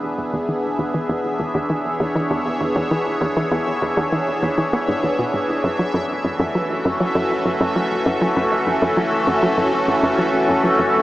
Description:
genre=ambient, sequencer-driven space music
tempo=99 BPM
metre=4/4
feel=straight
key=F# minor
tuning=A4 = 440 Hz
part: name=evolving wavetable pad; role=sustained chords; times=0.0-11.0 s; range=E3 to C#5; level=-19 LUFS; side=equal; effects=phaser, built-in reverb
part: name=warm sub bass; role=bass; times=0.0-11.0 s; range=E1 to F#1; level=-45 LUFS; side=equal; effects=none
part: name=bubbling stepped-filter texture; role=texture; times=0.0-11.0 s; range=E5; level=-29 LUFS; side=right 1 dB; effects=chorus, built-in reverb
part: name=hollow square pluck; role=riff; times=0.2-10.9 s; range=E2 to B3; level=-22 LUFS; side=equal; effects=chorus, tape echo
room=wet huge ambient reverb, RT60 6.9 s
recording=small speaker sound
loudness=-17 LUFS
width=side -16 dB against mid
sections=0.0-11.0 A section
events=fade-in on ambient pad 0.0-11.0; fade-in on synth texture 0.0-11.0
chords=0.0 E7; 5.6 F#m7

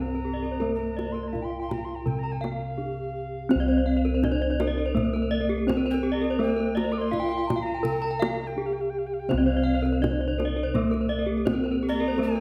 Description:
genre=Balinese gamelan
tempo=83 BPM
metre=4/4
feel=straight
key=C slendro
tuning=A4 = 441 Hz
part: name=gamelan-type bronze metallophone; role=melody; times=0.0-12.4 s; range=Bb3-45c to Bb4-45c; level=-30 LUFS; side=equal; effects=none
part: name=breathy alto recorder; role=second line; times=0.0-12.4 s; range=F5-41c to D6+25c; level=-40 LUFS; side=equal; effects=none
part: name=gamelan-type bronze metallophone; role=arpeggios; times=0.0-12.4 s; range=G4+25c to Bb5-45c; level=-35 LUFS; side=equal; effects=none
part: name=gamelan-type bossed gongs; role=bass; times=0.0-12.4 s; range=C2 to Bb4-45c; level=-33 LUFS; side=equal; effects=none
part: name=gamelan-type bronze metallophone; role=arpeggios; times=0.1-12.4 s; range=G4+25c to Bb5-45c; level=-36 LUFS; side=equal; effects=none
part: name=kendang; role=percussion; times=0.1-12.1 s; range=none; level=-35 LUFS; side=equal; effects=none
part: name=gamelan-type bronze metallophone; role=accompaniment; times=9.3-12.4 s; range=C3 to Bb3-45c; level=-36 LUFS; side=equal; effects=none
room=wet recital hall reverb, RT60 1.3 s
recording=none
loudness=-26 LUFS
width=mono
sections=0.0-12.4 A section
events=break 8.2-9.3; drum fill 8.6-9.3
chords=none

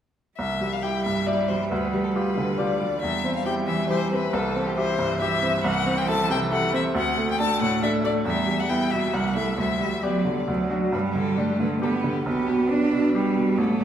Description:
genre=quick classical-period movement for piano trio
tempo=137 BPM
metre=3/4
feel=straight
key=C major, G major from 5.6 s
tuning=A4 = 441 Hz
part: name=rich violin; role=melody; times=0.4-13.8 s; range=G4 to A5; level=-28 LUFS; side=left 5 dB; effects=none
part: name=bright cello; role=second line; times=0.4-13.8 s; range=E3 to D4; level=-26 LUFS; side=right 3 dB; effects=none
part: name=bright baby grand piano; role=accompaniment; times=0.4-13.8 s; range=A1 to A4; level=-25 LUFS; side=equal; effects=none
room=wet recital hall reverb, RT60 1.8 s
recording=recorded in a church or concert hall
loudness=-21 LUFS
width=side -9 dB against mid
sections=0.4-10.9 A section; 10.9-13.8 B section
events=none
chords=0.4 C; 1.7 G7/D; 3.0 C/E; 4.3 C; 5.6 Am/C; 6.9 D5; 8.3 Em; 9.1 Am7/C; 9.6 G/D; 10.5 D; 10.9 G; 12.3 G/B

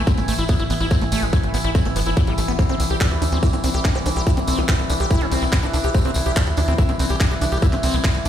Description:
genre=psychedelic trance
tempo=143 BPM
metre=4/4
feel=straight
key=unclear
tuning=A4 = 441 Hz
part: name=overtone-sweeping drone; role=sustained chords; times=0.0-8.3 s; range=E3 to E4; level=-25 LUFS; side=equal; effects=chorus, built-in reverb, sidechain pumping
part: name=liquid acid bass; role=riff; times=0.0-8.3 s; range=G3 to G4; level=-25 LUFS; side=left 1 dB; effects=phaser, auto-pan, sidechain pumping, dub echo
part: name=tight sequencer bass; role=bass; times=0.0-8.3 s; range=G1 to D2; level=-22 LUFS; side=equal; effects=none
part: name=electronic kick drum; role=drums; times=0.1-8.1 s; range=none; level=-17 LUFS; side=equal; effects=none
part: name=garage drum kit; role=drums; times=0.1-8.3 s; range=handclaps, hi-hat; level=-29 LUFS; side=equal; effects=none
part: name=tambourine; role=percussion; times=0.1-8.3 s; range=none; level=-33 LUFS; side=left 2 dB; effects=none
part: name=vowel-sweep wobble bass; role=second line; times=4.0-4.8 s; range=C4 to E4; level=-36 LUFS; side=equal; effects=none
room=light reverb, digital ambience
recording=played on a big sound system in a bare room, stone room reverb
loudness=-17 LUFS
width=side -10 dB against mid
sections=0.0-8.3 A section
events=none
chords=0.0 A5; 2.6 C5

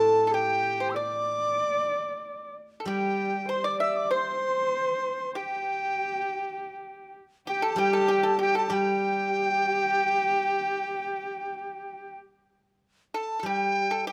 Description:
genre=chinese traditional, Chinese chamber ensemble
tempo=96 BPM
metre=4/4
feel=uneven beats, rubato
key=G zhi mode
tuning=A4 = 440 Hz
part: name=bright reedy large dizi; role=melody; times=0.0-14.1 s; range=G5 to E6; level=-30 LUFS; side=equal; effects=none
part: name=pipa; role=second line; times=0.0-14.1 s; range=G4 to E5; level=-35 LUFS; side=equal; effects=none
part: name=warm horsehead fiddle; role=second line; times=0.0-12.1 s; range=G4 to D5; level=-33 LUFS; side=equal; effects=none
part: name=steel-string zither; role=accompaniment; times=0.0-14.1 s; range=A2 to G3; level=-31 LUFS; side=equal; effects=none
room=light reverb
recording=close, detailed microphones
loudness=-27 LUFS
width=mono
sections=0.0-12.8 A section; 12.8-14.1 B section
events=none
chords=none

